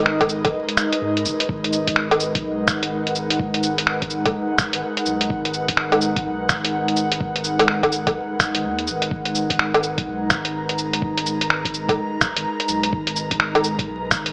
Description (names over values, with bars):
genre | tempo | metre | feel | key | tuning
future garage | 126 BPM | 4/4 | swing 62% on 16ths | G# minor | A4 = 440 Hz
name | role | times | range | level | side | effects
airy breathy pad | sustained chords | 0.0-14.3 s | G#3 to A#5 | -23 LUFS | equal | chorus, sidechain pumping
warm sub bass | bass | 0.0-14.3 s | D#1 to G#2 | -32 LUFS | equal | sidechain pumping
lo-fi sampler-style drum kit | drums | 0.1-14.3 s | cabasa, finger snaps, hi-hat, woodblock | -19 LUFS | equal | studio reverb
electronic kick drum | drums | 0.2-14.2 s | none | -28 LUFS | equal | studio reverb
room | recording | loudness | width
moderate lush hall reverb, RT60 1.8 s | vinyl crackle, small speaker sound | -18 LUFS | side -37 dB against mid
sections
0.0-14.3 A section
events
break 0.5-1.5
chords
0.0 G#m9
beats
0.07 0.55 1.02 | 1.50 1.97 2.45 2.93 | 3.40 3.88 4.35 4.83 | 5.31 5.78 6.26 6.74 | 7.21 7.69 8.16 8.64 | 9.12 9.59 10.07 10.54 | 11.02 11.50 11.97 12.45 | 12.93 13.40 13.88